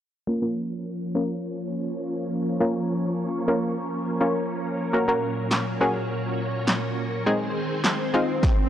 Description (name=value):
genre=dance-pop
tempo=103 BPM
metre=4/4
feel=straight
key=Bb minor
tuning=A4 = 440 Hz
part: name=analog pluck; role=accompaniment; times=0.3-8.4 s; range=Ab3 to Db5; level=-25 LUFS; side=equal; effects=chorus, sidechain pumping, low-pass filter
part: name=string machine, violins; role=sustained chords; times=0.3-8.4 s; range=Bb2 to Db5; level=-27 LUFS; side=equal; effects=ensemble chorus, sidechain pumping, low-pass filter
part: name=punchy analog drum machine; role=drums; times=5.5-8.6 s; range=handclaps, kick drum, snare drum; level=-23 LUFS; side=equal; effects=none
part: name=swell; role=sound effects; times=7.6-8.7 s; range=none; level=-30 LUFS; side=left 1 dB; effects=none
room=light reverb, digital ambience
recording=dry, gritty hardware recording, transformer saturation, cassette tape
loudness=-23 LUFS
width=side -10 dB against mid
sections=0.3-8.7 A section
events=filter sweep 0.3-8.7; swell 7.6-8.7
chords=0.3 Bbm; 4.9 Gb/Bb; 7.3 Ab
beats=| 0.28 0.86 1.44 2.02 | 2.61 3.19 3.77 4.35 | 4.94 5.52 6.10 6.68 | 7.27 7.85 8.43